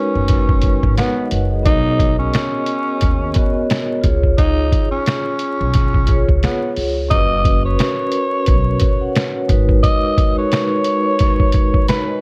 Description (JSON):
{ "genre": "hip hop, boom-bap hip-hop", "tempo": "88 BPM", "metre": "4/4", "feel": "swing 58% on 16ths", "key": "G# dorian", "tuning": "A4 = 439 Hz", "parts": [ { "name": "growling tenor saxophone", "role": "melody", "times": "0.0-12.2 s", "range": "B3 to D#5", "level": "-23 LUFS", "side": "equal", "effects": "high-pass filter, low-pass filter, tape echo" }, { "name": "vibraphone with soft mallets", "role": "accompaniment", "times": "0.0-12.2 s", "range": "G#3 to G#5", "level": "-23 LUFS", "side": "equal", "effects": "cassette tape, high-pass filter, low-pass filter" }, { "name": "upright bass", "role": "bass", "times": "0.2-9.8 s", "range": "F#1 to D#2", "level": "-22 LUFS", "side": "equal", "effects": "none" }, { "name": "trip hop sampler-style drum kit", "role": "drums", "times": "0.3-12.1 s", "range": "hi-hat, kick drum, snare drum", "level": "-19 LUFS", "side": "equal", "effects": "none" } ], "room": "small room ambience", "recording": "dark, warm production, vinyl crackle", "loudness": "-16 LUFS", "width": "mono", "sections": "0.0-7.1 A section; 7.1-12.2 B section", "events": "none", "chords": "0.0 G#m7; 1.7 Bmaj7; 4.0 C#; 7.1 F#sus4; 9.5 G#m7" }